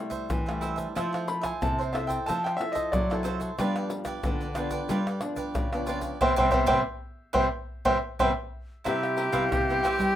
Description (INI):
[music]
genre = samba and choro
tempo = 91 BPM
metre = 4/4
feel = straight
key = C major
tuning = A4 = 437 Hz
[part]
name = clear baby grand piano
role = melody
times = 0.0-10.2 s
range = C5 to B5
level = -26 LUFS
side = equal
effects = none
[part]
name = nylon-string guitar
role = accompaniment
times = 0.0-10.1 s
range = G2 to A4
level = -34 LUFS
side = left 1 dB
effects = none
[part]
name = cavaquinho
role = accompaniment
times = 0.1-10.2 s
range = E4 to E5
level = -34 LUFS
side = right 6 dB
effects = none
[part]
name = tube shaker, surdo, pandeiro, tamborim and agogo bells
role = percussion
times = 0.1-10.2 s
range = none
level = -33 LUFS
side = equal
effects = none
[part]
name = nylon-string guitar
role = bass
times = 0.3-10.1 s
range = C3 to G3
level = -32 LUFS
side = equal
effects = none
[part]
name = breathy bright jazz flute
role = second line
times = 8.9-10.2 s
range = G4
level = -26 LUFS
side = equal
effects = none
[sound]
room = moderate studio reverb, RT60 0.6 s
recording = rough home demo mix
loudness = -25 LUFS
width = side -11 dB against mid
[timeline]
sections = 0.0-8.9 A section; 8.9-10.2 B section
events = grand piano solo 0.0-8.9; band accent 6.2-8.9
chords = 0.0 C6; 1.0 Fmaj7; 3.6 G7; 6.2 Cmaj7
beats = 0.31 | 0.96 1.62 2.28 2.94 | 3.59 4.25 4.91 5.56 | 6.22 6.88 7.54 8.20 | 8.86 9.52